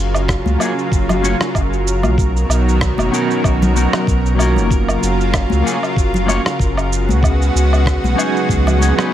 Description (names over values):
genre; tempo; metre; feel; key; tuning
sunset chillout; 95 BPM; 4/4; swing 55% on 16ths; F# major; A4 = 440 Hz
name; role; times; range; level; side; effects
lush unison pad; sustained chords; 0.0-9.1 s; B2 to A#4; -19 LUFS; right 1 dB; chorus
warm sub bass; bass; 0.0-8.9 s; F#1 to C#2; -16 LUFS; equal; none
electronic woodblock, cabasa and rim click; drums; 0.1-9.1 s; none; -22 LUFS; right 2 dB; none
electronic kick drum; drums; 0.3-8.6 s; none; -18 LUFS; equal; none
congas; percussion; 0.5-8.9 s; none; -24 LUFS; left 3 dB; none
clean electric guitar; accompaniment; 0.6-9.1 s; F#3 to C#5; -21 LUFS; left 1 dB; auto-pan, digital delay
room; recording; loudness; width
light reverb; none; -13 LUFS; side -11 dB against mid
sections
0.0-9.1 A section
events
none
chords
0.0 F#maj7; 2.2 Bmaj7; 4.7 F#maj7; 6.9 C#7sus4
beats
0.28 0.92 1.55 | 2.18 2.81 3.44 4.07 | 4.71 5.34 5.97 6.60 | 7.23 7.86 8.50 9.13